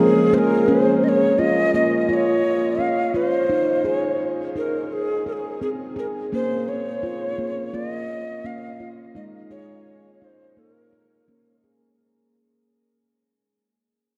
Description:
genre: world meditative, meditative tuned percussion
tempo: 85 BPM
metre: 4/4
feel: straight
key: Bb minor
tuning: A4 = 440 Hz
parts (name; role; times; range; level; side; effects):
- breathy Native American-style cedar flute; melody; 0.0-11.6 s; Ab4 to F5; -24 LUFS; equal; shimmer reverb
- handpan; arpeggios; 0.0-12.0 s; F3 to Bb4; -24 LUFS; equal; shimmer reverb, tape echo
room: wet huge ambient reverb, RT60 7.0 s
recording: in a vast, echoing space, cassette tape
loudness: -21 LUFS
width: mono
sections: 0.7-12.0 A section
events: fade-out 0.7-12.0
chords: 0.0 Bbm; 3.5 Ab; 6.3 Bbm; 9.2 Ab5; 10.6 Bbm

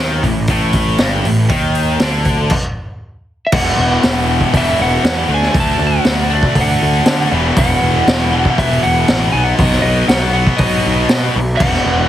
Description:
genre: hard rock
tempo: 119 BPM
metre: 4/4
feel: straight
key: unclear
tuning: A4 = 440 Hz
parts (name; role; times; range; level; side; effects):
- heavy high-gain guitar; riff; 0.0-12.1 s; E2 to D4; -17 LUFS; left 1 dB; distortion
- fuzz picked electric bass; bass; 0.0-12.0 s; E1 to D3; -17 LUFS; equal; overdrive
- raw garage drum kit; drums; 0.2-11.8 s; crash cymbal, hi-hat, kick drum, snare drum; -16 LUFS; equal; none
- lightly driven lead guitar; melody; 3.5-12.1 s; D5 to A5; -19 LUFS; equal; none
room: light reverb, studio ambience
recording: heavily compressed radio sound, multiband compression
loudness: -12 LUFS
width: side -12 dB against mid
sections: 0.0-3.5 A section; 3.5-12.1 B section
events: stop 2.5-3.5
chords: 0.0 D#maj7#11/G; 3.5 E5; 5.3 D; 7.3 E5; 9.3 B

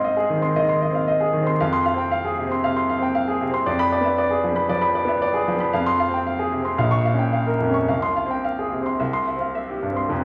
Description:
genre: classical, virtuoso piano study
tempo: 106-117 BPM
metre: 4/4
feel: rubato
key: F minor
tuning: A4 = 439 Hz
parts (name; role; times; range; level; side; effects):
- warm grand piano; solo; 0.0-10.2 s; F1 to Db6; -22 LUFS; equal; none
room: wet recital hall reverb, RT60 1.3 s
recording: vinyl crackle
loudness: -22 LUFS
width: mono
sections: 0.0-10.1 A section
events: none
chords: 0.0 Ab; 1.6 Fm; 3.7 Fdim7; 5.7 Fm; 6.8 Bbm; 7.9 Fm/C; 9.0 C

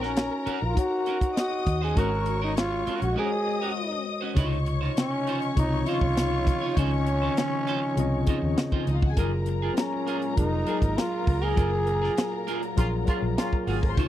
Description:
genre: lush 1970s-style soul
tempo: 100 BPM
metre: 4/4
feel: straight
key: Db major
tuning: A4 = 440 Hz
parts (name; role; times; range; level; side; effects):
- warm studio string section; second line; 0.0-14.1 s; C4 to Eb6; -34 LUFS; left 5 dB; slapback echo
- mellow tine electric piano; accompaniment; 0.0-14.1 s; C3 to Eb5; -31 LUFS; left 4 dB; medium stereo tremolo
- electric guitar at the edge of break-up; riff; 0.0-14.1 s; Bb3 to Db5; -35 LUFS; right 9 dB; none
- vintage muted fingered electric bass; bass; 0.0-14.1 s; F1 to Eb2; -28 LUFS; equal; none
- tight funk drum kit; drums; 0.0-14.1 s; hi-hat, kick drum, snare drum; -24 LUFS; equal; none
- growling trombone; melody; 0.1-12.6 s; C4 to Bb4; -28 LUFS; right 1 dB; none
- clear horn section; stabs; 2.0-2.4, 12.8-13.9 s; Bb3 to Gb4; -34 LUFS; right 2 dB; none
- soft string machine; sustained chords; 4.8-14.1 s; Bb2 to F4; -38 LUFS; equal; phaser, ensemble chorus
room: small room ambience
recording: dry, close 1970s-style studio recording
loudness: -23 LUFS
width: side -12 dB against mid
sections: 0.0-4.4 A section; 4.4-14.1 B section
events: break 3.2-4.4; band accent 11.6-14.0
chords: 0.0 Ebm7/Bb; 2.0 Ab9sus4; 4.4 Dbmaj9; 9.2 Gbmaj9

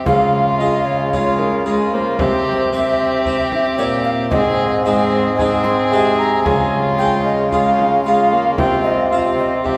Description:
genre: classical, renaissance-style consort dance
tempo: 113 BPM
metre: 4/4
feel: straight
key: unclear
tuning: A4 = 439 Hz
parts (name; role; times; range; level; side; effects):
- warm violin; second line; 0.0-9.8 s; F4 to Ab4; -25 LUFS; equal; none
- harpsichord; accompaniment; 0.0-9.8 s; Ab2 to C5; -25 LUFS; equal; none
- warm viola; accompaniment; 0.0-9.8 s; Ab3 to C4; -24 LUFS; equal; none
- clear bassoon; bass; 0.0-9.8 s; Ab2 to Db3; -22 LUFS; equal; none
- mellow tenor recorder; melody; 0.1-9.8 s; Ab4 to C6; -22 LUFS; equal; none
- frame drum; percussion; 0.1-9.8 s; none; -30 LUFS; equal; none
room: wet cathedral reverb, RT60 4.6 s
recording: recorded in a church or concert hall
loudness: -16 LUFS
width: mono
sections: 0.0-9.8 A section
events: none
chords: 0.1 Db; 2.2 C; 4.3 Ab; 6.5 Db; 8.6 Csus4

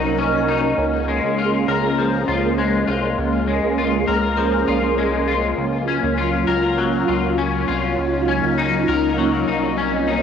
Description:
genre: dream pop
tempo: 100 BPM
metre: 4/4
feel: straight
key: unclear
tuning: A4 = 439 Hz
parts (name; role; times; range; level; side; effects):
- string machine, violas; sustained chords; 0.0-10.2 s; Gb3 to Bb4; -20 LUFS; right 1 dB; phaser, ensemble chorus, cassette tape, plate reverb
- electric guitar at the edge of break-up; arpeggios; 0.0-10.2 s; F3 to Bb4; -21 LUFS; left 6 dB; ensemble chorus, cassette tape, tape echo, plate reverb
- chorused synth bass; bass; 0.0-10.2 s; C2 to Db2; -26 LUFS; right 2 dB; none
- vibraphone with hard mallets; texture; 0.2-10.2 s; Bb4 to Ab5; -28 LUFS; right 10 dB; cassette tape, tape echo, plate reverb
room: wet booth ambience, RT60 0.2 s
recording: home recording on cassette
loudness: -17 LUFS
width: side -7 dB against mid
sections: 0.0-10.2 A section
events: none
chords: 0.0 Ebm7; 0.8 Bbm7/Db; 5.6 Gbmaj7/Db; 8.0 Ebm7/Db

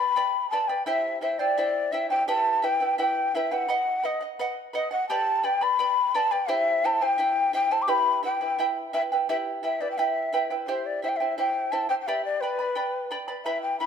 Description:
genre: andean folk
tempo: 86 BPM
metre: 2/4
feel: straight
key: E minor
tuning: A4 = 440 Hz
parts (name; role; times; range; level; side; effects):
- breathy mellow large quena; melody; 0.0-13.9 s; B4 to D6; -24 LUFS; left 3 dB; none
- charango; accompaniment; 0.0-13.9 s; E4 to B5; -28 LUFS; right 5 dB; none
room: light reverb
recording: close, detailed microphones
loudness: -23 LUFS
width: side -7 dB against mid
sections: 0.0-10.7 A section; 10.7-13.9 B section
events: none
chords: 0.0 G; 0.9 C; 2.3 Em; 3.7 B; 5.1 G; 6.5 C; 7.9 Em; 10.7 C; 12.1 G

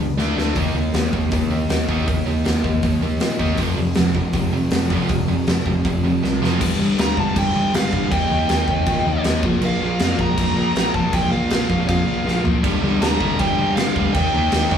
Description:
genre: punk rock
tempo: 159 BPM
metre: 4/4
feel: straight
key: G minor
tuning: A4 = 444 Hz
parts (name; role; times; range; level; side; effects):
- sludgy distorted guitar; riff; 0.0-14.8 s; F2 to Eb4; -23 LUFS; left 5 dB; overdrive
- tight distorted guitar; riff; 0.0-6.6, 12.6-14.8 s; F2 to Eb4; -26 LUFS; right 7 dB; distortion
- fretless electric bass; bass; 0.0-14.8 s; F1 to Bb2; -24 LUFS; equal; none
- big rock drum kit; drums; 0.2-14.8 s; crash cymbal, hi-hat, kick drum, snare drum, toms; -22 LUFS; equal; none
- thick fuzz guitar; riff; 0.6-14.8 s; F2 to Eb4; -25 LUFS; right 1 dB; distortion
- bluesy overdriven lead guitar; melody; 7.0-14.8 s; F5 to Bb5; -23 LUFS; right 1 dB; distortion
room: light reverb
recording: band playing live in one room, small room ambience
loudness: -17 LUFS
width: side -8 dB against mid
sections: 0.0-6.6 A section; 6.6-14.8 B section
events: drum fill 0.2-0.6, 6.2-6.6, 12.3-12.6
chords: 0.2 D5; 0.6 Eb5; 3.6 F5; 6.6 G5; 8.1 Eb; 9.4 Bb5; 12.6 Gm; 14.1 Eb

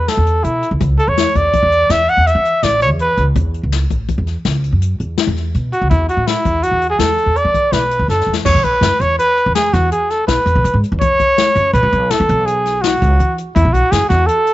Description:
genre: progressive instrumental, band music in an uneven meter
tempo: 165 BPM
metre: 7/4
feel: straight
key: E mixolydian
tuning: A4 = 438 Hz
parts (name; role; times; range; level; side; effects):
- breathy trumpet; melody; 0.0-14.5 s; E4 to F#5; -14 LUFS; right 1 dB; none
- upright bass; bass; 0.0-14.3 s; A1 to E3; -16 LUFS; equal; none
- jazz brush drum kit; drums; 0.1-14.5 s; crash cymbal, hi-hat, kick drum, snare drum; -20 LUFS; left 5 dB; none
room: light reverb, small room ambience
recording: 1960s-style stereo, nothing above 7.8 kHz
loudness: -12 LUFS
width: side -15 dB against mid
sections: 0.0-8.5 A section; 8.5-14.5 B section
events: drum fill 8.1-8.5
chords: 0.0 N.C.; 5.9 Esus4; 8.5 E5

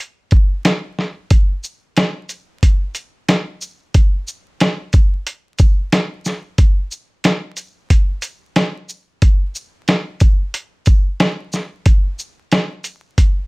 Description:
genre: hip hop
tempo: 91 BPM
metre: 4/4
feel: swing 58% on 16ths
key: none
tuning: none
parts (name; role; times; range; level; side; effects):
- lo-fi sampler-style drum kit; drums; 0.3-13.4 s; hi-hat, kick drum, shaker, snare drum; -13 LUFS; equal; none
room: light reverb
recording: vinyl crackle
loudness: -15 LUFS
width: side -29 dB against mid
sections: 0.0-1.3 A section; 1.3-13.5 B section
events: none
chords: none

